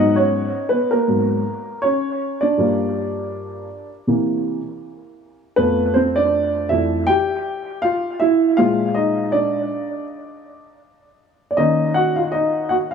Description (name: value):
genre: hip hop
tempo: 80 BPM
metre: 4/4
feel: swing 57% on 16ths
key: unclear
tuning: A4 = 439 Hz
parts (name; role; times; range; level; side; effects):
- dark upright piano; solo; 0.0-12.9 s; F2 to G5; -17 LUFS; equal; dub echo
room: light reverb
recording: echo-heavy mix, studio ambience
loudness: -17 LUFS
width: side -6 dB against mid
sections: 0.0-12.9 A section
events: upright piano solo 0.0-12.9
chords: 0.0 G#m9; 2.6 Gm7; 4.1 C7; 5.6 Fmaj7; 8.6 A#7; 11.6 D#m7